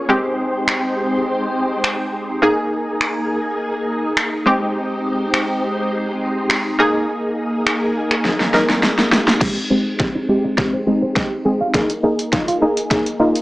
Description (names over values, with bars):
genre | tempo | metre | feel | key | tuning
dance-pop | 103 BPM | 4/4 | straight | Ab major | A4 = 440 Hz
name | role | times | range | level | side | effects
ensemble organ-string | sustained chords | 0.0-13.4 s | Ab3 to C5 | -21 LUFS | equal | ensemble chorus, sidechain pumping, low-pass filter
punchy chord stab | accompaniment | 0.1-13.4 s | Ab3 to Bb4 | -19 LUFS | equal | chorus, sidechain pumping, low-pass filter
pop drum kit | drums | 0.7-13.4 s | crash cymbal, finger snaps, hi-hat, kick drum, snare drum | -18 LUFS | equal | overdrive
twelve-string electric guitar | riff | 9.4-13.3 s | Ab3 to F4 | -24 LUFS | right 1 dB | analog chorus, low-pass filter
room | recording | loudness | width
moderate plate reverb, RT60 1.9 s | small speaker sound | -16 LUFS | side -18 dB against mid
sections
0.0-9.4 A section; 9.4-13.4 B section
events
drum fill 8.2-9.4, 9.4-13.4; build-up 9.4-13.4; filter sweep 9.4-13.4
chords
0.1 Abmaj7; 2.4 Ebsus4; 4.5 Abmaj7; 6.8 Ebsus4; 9.4 Abmaj7; 11.7 Ebsus4